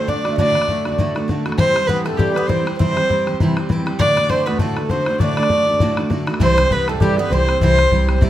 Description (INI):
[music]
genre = celtic folk, Celtic reel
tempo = 199 BPM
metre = 4/4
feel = swing 57% on 8ths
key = unclear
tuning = A4 = 440 Hz
[part]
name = dark fiddle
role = melody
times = 0.0-8.2 s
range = G4 to D5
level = -19 LUFS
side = equal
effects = none
[part]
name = Irish bouzouki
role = second line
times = 0.0-8.2 s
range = G3 to D4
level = -26 LUFS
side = right 5 dB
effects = none
[part]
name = bright baroque flute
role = second line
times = 0.0-8.2 s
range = G4 to E5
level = -26 LUFS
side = left 5 dB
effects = none
[part]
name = picked steel-string acoustic guitar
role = accompaniment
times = 0.0-8.3 s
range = D2 to G4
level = -21 LUFS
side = right 1 dB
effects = none
[part]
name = bodhran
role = percussion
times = 0.1-8.3 s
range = none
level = -22 LUFS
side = left 2 dB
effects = none
[part]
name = upright bass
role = bass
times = 6.4-8.3 s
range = C2 to G2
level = -18 LUFS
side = equal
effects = none
[sound]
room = moderate recital hall reverb, RT60 1.6 s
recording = close, detailed microphones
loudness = -15 LUFS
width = side -13 dB against mid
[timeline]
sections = 0.0-6.4 A section; 6.4-8.3 A section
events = none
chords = 0.0 D; 1.6 C; 4.0 D; 6.4 C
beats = 0.08 | 0.38 0.68 0.98 1.28 | 1.58 1.89 2.19 2.49 | 2.79 3.09 3.39 3.69 | 4.00 4.30 4.60 4.90 | 5.20 5.50 5.80 6.10 | 6.41 6.71 7.01 7.31 | 7.61 7.91 8.21